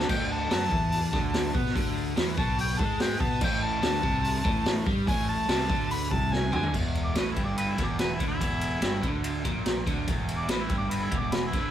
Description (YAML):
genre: blues rock power trio and southern rock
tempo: 144 BPM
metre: 4/4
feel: straight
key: unclear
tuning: A4 = 441 Hz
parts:
  - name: mellow harmonica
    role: melody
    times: 0.0-11.7 s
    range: E4 to B5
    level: -31 LUFS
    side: left 1 dB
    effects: overdrive
  - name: overdriven electric guitar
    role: riff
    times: 0.0-11.7 s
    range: E2 to B3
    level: -31 LUFS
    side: right 1 dB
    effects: none
  - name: fuzz fingered electric bass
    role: bass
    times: 0.0-11.7 s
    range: E1 to B2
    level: -33 LUFS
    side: equal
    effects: overdrive
  - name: raw garage drum kit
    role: drums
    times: 0.1-11.6 s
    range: crash cymbal, hi-hat, kick drum, ride cymbal, snare drum, toms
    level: -28 LUFS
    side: equal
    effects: none
room: light reverb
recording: band playing live in one room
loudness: -25 LUFS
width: side -11 dB against mid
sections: 0.0-6.7 A section; 6.7-11.7 B section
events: harmonica solo 0.0-6.7; drum fill 6.3-6.7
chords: 0.1 D5; 3.4 Amadd11; 6.7 Em7b5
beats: | 0.10 0.51 0.92 1.34 | 1.75 2.17 2.58 3.00 | 3.41 3.83 4.24 4.66 | 5.07 5.49 5.90 6.32 | 6.74 7.15 7.57 7.99 | 8.40 8.82 9.24 9.66 | 10.08 10.49 10.91 11.33